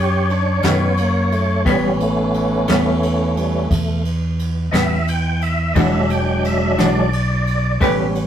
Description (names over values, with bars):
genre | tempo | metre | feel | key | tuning
slow blues | 58 BPM (dotted quarters) | 12/8 | straight | unclear | A4 = 440 Hz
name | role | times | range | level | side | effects
tonewheel organ | sustained chords | 0.0-8.3 s | F#3 to G5 | -19 LUFS | equal | slow rotary speaker, chorus vibrato
fingered electric bass | bass | 0.0-8.3 s | E1 to F#2 | -20 LUFS | equal | none
jazz brush drum kit | drums | 0.3-8.3 s | kick drum, ride cymbal, snare drum | -26 LUFS | right 1 dB | none
clean electric guitar | accompaniment | 0.6-8.0 s | A2 to B4 | -19 LUFS | left 1 dB | tremolo
room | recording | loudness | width
moderate studio reverb, RT60 0.6 s | rough rehearsal-room recording, tube saturation | -15 LUFS | side -9 dB against mid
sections
0.0-8.3 A section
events
tonewheel organ solo 0.0-8.3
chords
0.0 B9; 1.7 A9; 5.8 E9